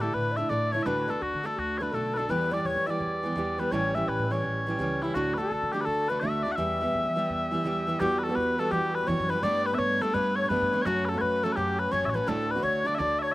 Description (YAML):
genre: celtic folk, Celtic hornpipe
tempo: 168 BPM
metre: 4/4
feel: swing 64% on 8ths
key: E dorian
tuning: A4 = 440 Hz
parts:
  - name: mellow small bagpipes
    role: melody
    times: 0.0-13.3 s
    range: E4 to F#5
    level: -29 LUFS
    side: left 1 dB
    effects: slapback echo
  - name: bright baroque flute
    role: second line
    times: 0.0-13.3 s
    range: E4 to E5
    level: -30 LUFS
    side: left 2 dB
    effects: none
  - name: picked steel-string acoustic guitar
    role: accompaniment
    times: 0.0-13.3 s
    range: D2 to G4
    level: -30 LUFS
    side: right 2 dB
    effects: none
  - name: upright bass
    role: bass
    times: 0.0-13.3 s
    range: A1 to E3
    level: -35 LUFS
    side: equal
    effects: none
room: little or no reverb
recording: recorded outdoors, with no room sound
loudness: -25 LUFS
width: side -17 dB against mid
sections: 0.0-8.0 A section; 8.0-13.3 B section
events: none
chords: 0.0 Asus4; 0.9 D; 2.3 Em; 3.7 A7; 5.2 D; 6.6 Em; 8.0 Emadd9; 9.4 Gadd9; 10.9 F#m; 12.3 D